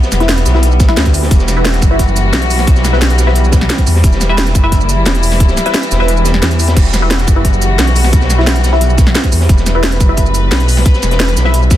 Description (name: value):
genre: dark technical drum and bass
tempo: 176 BPM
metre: 4/4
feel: straight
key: E minor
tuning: A4 = 440 Hz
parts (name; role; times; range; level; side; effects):
- warm studio string section; sustained chords; 0.0-11.8 s; E3 to B4; -19 LUFS; left 2 dB; sidechain pumping
- crunchy breakbeat drum kit; drums; 0.0-11.8 s; hi-hat, snare drum; -24 LUFS; equal; high-pass filter on hats, studio reverb, high-pass filter on snare, high-pass filter on room
- drum and bass drum kit; drums; 0.0-11.8 s; crash cymbal, hi-hat, shaker, snare drum; -17 LUFS; right 1 dB; studio reverb
- wide detuned saw bass; bass; 0.1-11.8 s; E1 to E2; -12 LUFS; equal; chorus, overdrive
- filtered dub chord stab; stabs; 0.2-11.5 s; E4 to E5; -19 LUFS; left 1 dB; phaser, analog chorus, tape echo
- electronic kick drum; drums; 0.8-11.8 s; none; -10 LUFS; equal; studio reverb
room: small room ambience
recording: dense, heavily limited modern master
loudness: -9 LUFS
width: side -13 dB against mid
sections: 0.0-11.8 A section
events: kick drops out 6.1-6.8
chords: 0.0 Emadd9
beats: 0.29 0.63 0.97 | 1.31 1.65 1.99 2.33 | 2.67 3.02 3.36 3.70 | 4.04 4.38 4.72 5.06 | 5.40 5.74 6.08 6.42 | 6.77 7.11 7.45 7.79 | 8.13 8.47 8.81 9.15 | 9.49 9.83 10.18 10.52 | 10.86 11.20 11.54